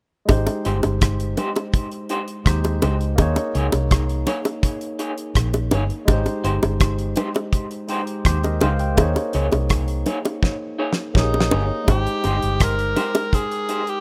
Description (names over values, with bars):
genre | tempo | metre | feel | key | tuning
lovers rock reggae | 83 BPM | 4/4 | straight | Ab major | A4 = 440 Hz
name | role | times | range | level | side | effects
barky tine electric piano | accompaniment | 0.3-14.0 s | Ab3 to G5 | -29 LUFS | equal | overdrive, phaser
vintage muted fingered electric bass | bass | 0.3-12.9 s | G1 to Eb2 | -24 LUFS | equal | none
damped 70s drum kit | drums | 0.3-14.0 s | hi-hat, kick drum, rim click, snare drum | -22 LUFS | equal | none
bongos | percussion | 0.3-13.3 s | none | -24 LUFS | equal | none
electric guitar through a small old amp | stabs | 0.7-13.8 s | Eb4 to Db5 | -32 LUFS | equal | tremolo, tape echo
breathy tenor saxophone | melody | 11.2-14.0 s | Eb4 to Bb4 | -26 LUFS | equal | tape echo
room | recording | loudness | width
little or no reverb | rough home demo mix | -21 LUFS | mono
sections
0.3-11.9 A section; 11.9-14.0 B section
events
drum fill 10.4-11.9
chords
0.3 Abmaj7; 3.2 Eb7sus4; 6.1 Abmaj7; 9.0 Eb7sus4; 11.9 Abmaj7